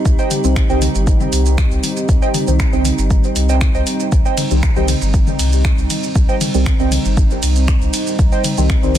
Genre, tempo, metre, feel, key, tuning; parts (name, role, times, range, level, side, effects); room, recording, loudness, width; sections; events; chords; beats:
dub techno; 118 BPM; 4/4; straight; C minor; A4 = 441 Hz
dark analog pad; sustained chords; 0.0-9.0 s; G3 to C5; -23 LUFS; equal; chorus, sidechain pumping
metallic inharmonic drone; texture; 0.0-9.0 s; Eb4; -27 LUFS; right 3 dB; chorus, built-in reverb, sidechain pumping
warm sub bass; bass; 0.1-9.0 s; G1 to C2; -17 LUFS; equal; sidechain pumping
deep house drum kit; drums; 0.1-9.0 s; finger snaps, hi-hat, ride cymbal, shaker; -24 LUFS; right 2 dB; soft clipping on snare, dub echo
electronic kick drum; drums; 0.1-8.8 s; -15 LUFS; equal
warbly lo-fi synth keys; riff; 0.2-8.4 s; C5 to G5; -26 LUFS; right 5 dB; chorus, vintage 12-bit sampler grit, sidechain pumping, dub echo
electronic toms; percussion; 0.3-9.0 s; -26 LUFS; left 6 dB; overdrive, sidechain pumping on toms
deep mellow chord stab; stabs; 0.4-9.0 s; Eb3 to C4; -23 LUFS; right 1 dB; chorus, phaser, sidechain pumping, dub echo
digital ambience; dense, heavily limited modern master; -13 LUFS; side -11 dB against mid
0.0-9.0 A section
0.0 Cm
| 0.05 0.56 1.07 1.58 | 2.09 2.60 3.10 3.61 | 4.12 4.63 5.14 5.65 | 6.16 6.67 7.17 7.68 | 8.19 8.70